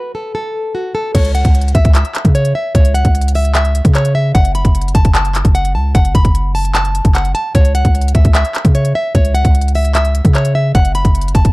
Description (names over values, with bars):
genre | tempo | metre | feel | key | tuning
hip hop, trap | 150 BPM | 4/4 | half-time | C# minor | A4 = 440 Hz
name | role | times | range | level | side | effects
nylon-string guitar | melody | 0.0-11.5 s | F#4 to B5 | -18 LUFS | equal | tape echo
long sustained 808-style bass | bass | 1.1-11.5 s | F#1 to C#3 | -14 LUFS | equal | none
trap drum kit | drums | 1.1-11.5 s | crash cymbal, handclaps, hi-hat, kick drum | -12 LUFS | equal | none
room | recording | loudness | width
digital ambience | dark, warm production | -10 LUFS | side -21 dB against mid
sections
0.0-1.1 A section; 1.1-11.5 B section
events
break 0.0-1.1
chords
0.0 N.C.; 1.1 C#m; 4.3 F#m; 7.5 C#m; 10.7 F#m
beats
0.35 0.75 | 1.15 1.55 1.95 2.35 | 2.75 3.15 3.55 3.95 | 4.35 4.75 5.15 5.55 | 5.95 6.35 6.75 7.15 | 7.55 7.95 8.35 8.75 | 9.15 9.55 9.95 10.35 | 10.75 11.15